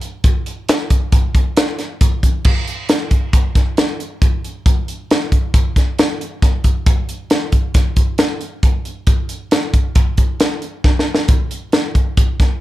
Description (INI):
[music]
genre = rock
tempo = 136 BPM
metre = 5/4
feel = straight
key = none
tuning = none
[part]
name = crisp fusion drum kit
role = drums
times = 0.0-12.5 s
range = crash cymbal, hi-hat, kick drum, snare drum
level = -13 LUFS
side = equal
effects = none
[sound]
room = little or no reverb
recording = dark, warm production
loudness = -14 LUFS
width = side -16 dB against mid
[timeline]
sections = 0.0-2.4 A section; 2.4-12.6 B section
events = drum fill 10.8-11.3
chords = none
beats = | 0.23 0.67 1.11 1.55 2.00 | 2.44 2.88 3.32 3.76 4.21 | 4.65 5.09 5.53 5.97 6.42 | 6.86 7.30 7.74 8.18 8.63 | 9.07 9.51 9.95 10.40 10.84 | 11.28 11.73 12.17